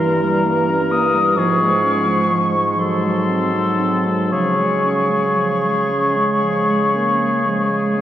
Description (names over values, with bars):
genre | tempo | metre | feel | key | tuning
classical, slow romantic movement for wind quintet | 38-45 BPM (dotted quarters) | 12/8 | rubato | Db major | A4 = 440 Hz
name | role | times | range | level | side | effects
mellow concert flute | melody | 0.0-8.0 s | Bb5 to Eb6 | -20 LUFS | left 2 dB | none
warm oboe | second line | 0.0-8.0 s | Ab4 to Bb4 | -24 LUFS | left 2 dB | none
dark French horn | accompaniment | 0.0-8.0 s | E3 to Bb3 | -22 LUFS | equal | none
mellow clarinet | accompaniment | 0.0-8.0 s | E3 to Eb4 | -24 LUFS | right 3 dB | none
mellow bassoon | bass | 0.0-8.0 s | G2 to Db3 | -22 LUFS | right 2 dB | none
room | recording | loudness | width
wet church reverb, RT60 3.2 s | worn, warbling old tape, cassette tape, warbly pitch drift | -15 LUFS | side -11 dB against mid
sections
0.0-8.0 A section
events
none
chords
0.0 Gdim7; 1.4 Db/Ab; 2.8 Ab7b9; 4.3 Db